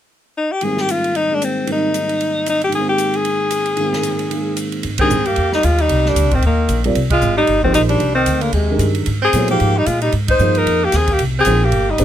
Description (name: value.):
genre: modal jazz.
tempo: 227 BPM.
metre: 4/4.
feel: swing 58% on 8ths.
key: Ab lydian.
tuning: A4 = 435 Hz.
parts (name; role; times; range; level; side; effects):
bright alto saxophone; melody; 0.4-12.0 s; Ab3 to C5; -17 LUFS; left 2 dB; none.
dark upright piano; accompaniment; 0.6-12.0 s; Ab2 to Eb5; -21 LUFS; right 2 dB; none.
swinging big-band drum kit; drums; 0.6-12.0 s; hi-hat, kick drum, ride cymbal, snare drum; -25 LUFS; right 1 dB; none.
upright bass; bass; 4.8-12.0 s; G1 to Bb2; -18 LUFS; equal; none.
clear tenor saxophone; second line; 5.0-12.0 s; C3 to Eb4; -21 LUFS; right 7 dB; none.
room: little or no reverb.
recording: close, detailed microphones.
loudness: -14 LUFS.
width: side -11 dB against mid.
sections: 0.6-4.8 A section; 4.8-12.0 B section.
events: band accent 5.0, 7.1, 10.3.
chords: 0.0 N.C.; 0.6 Abmaj9.